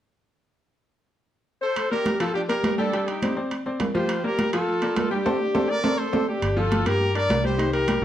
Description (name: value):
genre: latin, salsa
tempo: 206 BPM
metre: 4/4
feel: straight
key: G minor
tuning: A4 = 440 Hz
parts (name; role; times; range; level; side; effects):
- bright horn section; melody; 1.6-8.0 s; D4 to D5; -24 LUFS; left 1 dB; slapback echo
- congas; percussion; 1.8-8.0 s; none; -29 LUFS; right 1 dB; none
- timbales; percussion; 1.8-8.0 s; none; -30 LUFS; right 4 dB; none
- bright upright piano; accompaniment; 1.9-8.0 s; Eb3 to G5; -28 LUFS; left 1 dB; none
- vintage muted fingered electric bass; bass; 6.4-8.0 s; G1 to G2; -26 LUFS; equal; none
room: moderate large studio reverb, RT60 0.9 s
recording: worn, warbling old tape, cassette tape, warbly pitch drift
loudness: -21 LUFS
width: side -11 dB against mid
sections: 0.6-1.8 A section; 1.8-6.4 B section; 6.4-8.0 C section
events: band accent 5.3-6.4; drum fill 5.5-6.4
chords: 0.6 N.C.; 1.8 Gm7; 2.9 D7sus4; 4.1 Gm7; 5.3 D7sus4; 6.4 Gm7